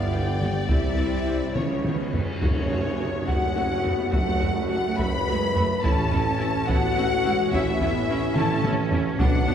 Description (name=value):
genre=cinematic, epic orchestral film score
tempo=71 BPM (dotted quarters)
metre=6/8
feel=straight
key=unclear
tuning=A4 = 440 Hz
part: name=warm symphonic violin section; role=melody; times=0.0-9.5 s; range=C#5 to B5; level=-34 LUFS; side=left 5 dB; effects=none
part: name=warm symphonic violin section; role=second line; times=0.0-9.5 s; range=C#5 to B5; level=-33 LUFS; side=left 2 dB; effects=none
part: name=bright trombone section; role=sustained chords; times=0.0-9.5 s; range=B2 to D4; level=-36 LUFS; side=right 2 dB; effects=none
part: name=mellow French horn section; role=sustained chords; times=0.0-9.5 s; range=C#4 to B4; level=-29 LUFS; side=left 5 dB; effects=none
part: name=clear symphonic double bass section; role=bass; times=0.0-9.5 s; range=G1 to F#2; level=-31 LUFS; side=right 2 dB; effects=none
part: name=rich symphonic cello section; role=bass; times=0.0-9.5 s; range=G2 to D4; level=-31 LUFS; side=right 3 dB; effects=none
part: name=warm tuba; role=bass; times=0.0-9.5 s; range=F#1 to C#2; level=-31 LUFS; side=right 3 dB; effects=none
part: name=rich symphonic viola section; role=accompaniment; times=0.1-9.5 s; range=E#3 to F#4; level=-34 LUFS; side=right 2 dB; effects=none
part: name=taiko ensemble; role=drums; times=0.4-9.5 s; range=none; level=-27 LUFS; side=equal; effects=none
part: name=bright flute section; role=second line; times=2.4-9.5 s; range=C#5 to B5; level=-31 LUFS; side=equal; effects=none
part: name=tam-tam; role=percussion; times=2.4-4.7 s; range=none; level=-37 LUFS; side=left 2 dB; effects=none
part: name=timpani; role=percussion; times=2.4-3.3, 9.2-9.5 s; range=F#2 to B2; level=-32 LUFS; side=left 1 dB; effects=none
room=wet concert hall reverb, RT60 2.3 s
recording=heard from further back in the room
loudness=-21 LUFS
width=side -8 dB against mid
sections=0.0-2.4 A section; 2.4-9.5 B section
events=drum fill 1.6-2.4, 8.4-9.2; band accent 2.4-3.0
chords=0.0 G; 0.7 C; 1.6 C#7; 2.4 F#m; 5.8 A